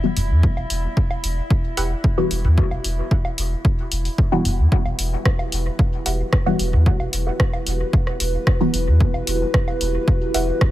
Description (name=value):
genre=dub techno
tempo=112 BPM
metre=4/4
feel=straight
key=E minor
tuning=A4 = 441 Hz
part: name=filtered dub chord stab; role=stabs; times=0.0-8.7 s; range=E3 to F#4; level=-26 LUFS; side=left 1 dB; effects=phaser, sidechain pumping, dub echo
part: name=metallic inharmonic drone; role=texture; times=0.0-4.7 s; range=E4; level=-35 LUFS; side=equal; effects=chorus, built-in reverb, sidechain pumping
part: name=soft dub sub bass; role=bass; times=0.2-10.5 s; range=E1 to E2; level=-20 LUFS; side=equal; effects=sidechain pumping
part: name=punchy analog drum machine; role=drums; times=0.2-10.7 s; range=hi-hat, rim click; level=-26 LUFS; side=equal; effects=dub echo
part: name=electronic toms and woodblock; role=percussion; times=0.2-9.8 s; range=none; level=-31 LUFS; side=equal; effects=sidechain pumping on perc, sidechain pumping on toms, dub echo
part: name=electronic kick drum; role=drums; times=0.4-10.7 s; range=none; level=-18 LUFS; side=equal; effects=none
part: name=filtered dub chord stab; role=riff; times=1.8-1.9, 6.1-10.5 s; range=G4 to F#5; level=-32 LUFS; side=right 3 dB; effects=chorus, sidechain pumping, dub echo
part: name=dark analog pad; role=sustained chords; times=4.7-10.7 s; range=E4 to B4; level=-27 LUFS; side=right 1 dB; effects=chorus, sidechain pumping
room=digital ambience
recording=none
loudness=-17 LUFS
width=side -14 dB against mid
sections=0.0-4.7 A section; 4.7-10.7 A section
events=filter sweep on synth stab 0.0-4.7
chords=0.0 Emadd9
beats=| 0.43 0.97 1.50 2.04 | 2.58 3.11 3.65 4.18 | 4.72 5.25 5.79 6.33 | 6.86 7.40 7.93 8.47 | 9.01 9.54 10.08 10.61